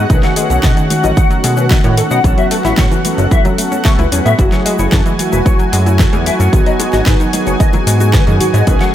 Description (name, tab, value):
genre	nu-disco, nu disco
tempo	112 BPM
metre	4/4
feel	straight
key	unclear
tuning	A4 = 443 Hz
part	mellow synth brass	accompaniment	0.0-8.9 s	D#3 to B4	-18 LUFS	right 1 dB	chorus, cassette tape, sidechain pumping, ping-pong delay
part	lush unison pad	sustained chords	0.0-8.9 s	F#4 to G#5	-21 LUFS	right 1 dB	chorus, sidechain pumping
part	analog pluck	arpeggios	0.0-8.9 s	D#3 to F#4	-20 LUFS	left 2 dB	chorus, cassette tape, sidechain pumping, ping-pong delay
part	mellow electric guitar	riff	0.0-8.9 s	E4 to F#5	-20 LUFS	left 4 dB	ensemble chorus, ping-pong delay
part	chorused synth bass	bass	0.0-8.8 s	E1 to B2	-14 LUFS	equal	none
part	electronic kick drum	drums	0.1-8.8 s	none	-13 LUFS	equal	none
part	pop drum kit	drums	0.1-8.9 s	hi-hat, shaker, snare drum	-20 LUFS	left 1 dB	none
part	egg shaker, bongos and congas	percussion	0.1-8.9 s	none	-27 LUFS	right 2 dB	none
room	digital ambience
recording	none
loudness	-10 LUFS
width	side -11 dB against mid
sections	0.0-8.9 A section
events	none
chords	0.1 B13; 2.2 A69; 4.4 F#m9; 6.5 G#m7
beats	| 0.10 0.64 1.17 1.71 | 2.24 2.78 3.31 3.85 | 4.39 4.92 5.46 5.99 | 6.53 7.07 7.60 8.14 | 8.67